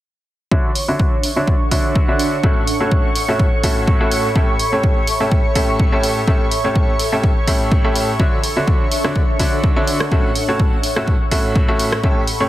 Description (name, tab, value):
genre	piano house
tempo	125 BPM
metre	4/4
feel	swing 54% on 16ths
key	A major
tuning	A4 = 438 Hz
part	analog string pad	sustained chords	0.5-12.5 s	C#5 to C#6	-25 LUFS	right 2 dB	ensemble chorus, sidechain pumping
part	bright grand piano	riff	0.5-12.5 s	A2 to E5	-20 LUFS	equal	sidechain pumping, low-pass filter, ping-pong delay
part	electronic kick drum	drums	0.5-12.1 s	none	-16 LUFS	equal	none
part	granular cloud pad	texture	1.2-12.5 s	D4 to C#6	-26 LUFS	right 1 dB	built-in reverb, sidechain pumping
part	punchy analog drum machine	drums	0.8-12.4 s	hi-hat, rim click	-24 LUFS	right 1 dB	none
room	digital ambience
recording	heavily compressed radio sound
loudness	-14 LUFS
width	side -14 dB against mid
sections	0.5-12.5 A section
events	none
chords	0.5 Dmaj9; 2.4 A6; 4.4 A7; 8.2 Dmaj9; 10.1 A6